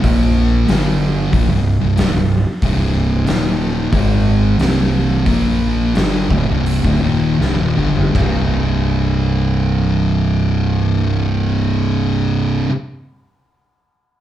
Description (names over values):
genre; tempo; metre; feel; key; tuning
stoner and doom metal; 78-93 BPM; 4/4; straight; C minor; A4 = 440 Hz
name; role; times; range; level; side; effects
thick fuzz guitar; riff; 0.0-12.7 s; C2 to Bb3; -20 LUFS; left 5 dB; distortion
thick fuzz guitar; riff; 0.0-12.7 s; C2 to Bb3; -17 LUFS; right 4 dB; distortion
fuzz fingered electric bass; bass; 0.0-12.7 s; C1 to Bb1; -20 LUFS; equal; overdrive, tube saturation
oversized low-tuned drum kit; drums; 0.0-8.3 s; hi-hat, kick drum, ride cymbal, snare drum, toms; -20 LUFS; equal; none
room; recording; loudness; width
moderate large studio reverb, RT60 0.8 s; band playing live in one room; -13 LUFS; side -12 dB against mid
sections
0.0-8.1 A section; 8.1-11.2 B section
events
slowing down 2.6-8.1; drum fill 7.4-8.1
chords
0.0 Bb5; 0.7 G5; 1.3 C5; 3.3 Eb5; 3.9 Ab5; 4.6 C5; 5.3 Bb5; 5.9 Cm; 8.1 C5